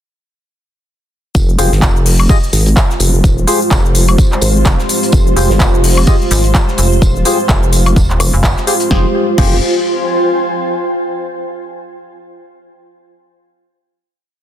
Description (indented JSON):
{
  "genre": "bass house",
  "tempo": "127 BPM",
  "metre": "4/4",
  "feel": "swing 58% on 16ths",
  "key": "F minor",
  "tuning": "A4 = 440 Hz",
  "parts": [
    { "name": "dark analog pad", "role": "sustained chords", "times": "2.7-9.1 s", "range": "Ab3 to C5", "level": "-21 LUFS", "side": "left 1 dB", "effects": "chorus, sidechain pumping" },
    { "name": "vowel-sweep wobble bass", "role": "bass", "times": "1.3-9.6 s", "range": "Eb1 to Ab1", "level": "-12 LUFS", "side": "equal", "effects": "chorus, tube saturation, sidechain pumping" },
    { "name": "cloth-damped thuddy drum kit", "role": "drums", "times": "1.3-8.9 s", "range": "hi-hat, snare drum, tambourine", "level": "-26 LUFS", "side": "right 1 dB", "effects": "sidechain pumping on hats, high-pass filter on hats, high-pass filter on snare, sidechain pumping on perc, high-pass filter on perc, high-pass filter on room" },
    { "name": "electronic kick drum", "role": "drums", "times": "1.3-9.5 s", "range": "none", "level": "-12 LUFS", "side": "equal", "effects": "none" },
    { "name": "granular cloud pad", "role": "texture", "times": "2.7-10.8 s", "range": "F4 to Ab5", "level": "-18 LUFS", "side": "right 1 dB", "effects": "built-in reverb, sidechain pumping" },
    { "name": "big-room dance drum kit", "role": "drums", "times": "1.4-9.5 s", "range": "crash cymbal, handclaps, hi-hat, shaker, snare drum, woodblock", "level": "-18 LUFS", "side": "left 2 dB", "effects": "overdrive" },
    { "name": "percussive organ stab", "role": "stabs", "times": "1.6-9.6 s", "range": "F4 to Eb5", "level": "-19 LUFS", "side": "left 2 dB", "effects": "lush chorus, sidechain pumping, ping-pong delay" },
    { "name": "metallic FM bass", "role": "bass", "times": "5.4-8.6 s", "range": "Eb1 to Ab1", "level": "-13 LUFS", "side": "equal", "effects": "overdrive, sidechain pumping" }
  ],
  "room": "digital ambience",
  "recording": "dense, heavily limited modern master",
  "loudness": "-10 LUFS",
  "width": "side -11 dB against mid",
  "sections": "1.3-8.9 drop; 8.9-10.8 final chord",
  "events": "drop 1.3-8.9",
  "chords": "1.3 Fmadd9"
}